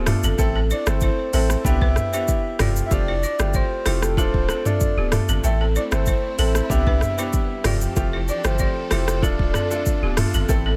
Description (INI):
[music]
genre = afrobeats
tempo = 95 BPM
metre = 4/4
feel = straight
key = unclear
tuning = A4 = 440 Hz
[part]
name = breathy flute-like synth lead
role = melody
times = 0.0-10.2 s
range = A4 to E5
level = -30 LUFS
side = equal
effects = chorus, delay
[part]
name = clear grand piano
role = accompaniment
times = 0.0-10.7 s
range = A3 to A4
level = -30 LUFS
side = equal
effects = none
[part]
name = balafon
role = riff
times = 0.0-10.8 s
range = B3 to D5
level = -31 LUFS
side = equal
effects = none
[part]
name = punchy sub bass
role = bass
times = 0.0-10.8 s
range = D1 to C2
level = -24 LUFS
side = equal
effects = none
[part]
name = afro-pop drum kit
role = drums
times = 0.1-10.6 s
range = hi-hat, kick drum, rim click, shaker, toms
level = -25 LUFS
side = equal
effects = overdrive
[part]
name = clear studio string section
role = sustained chords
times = 5.4-10.8 s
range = C3 to A4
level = -37 LUFS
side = equal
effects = sidechain pumping
[sound]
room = digital ambience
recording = none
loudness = -21 LUFS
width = mono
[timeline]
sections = 0.0-10.8 A section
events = kick muted 5.4-6.1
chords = 0.4 Am; 1.6 Cmaj7; 2.6 Fadd9; 4.2 Dm; 5.4 Am; 6.7 Cmaj7; 7.6 Fadd9; 9.2 Dm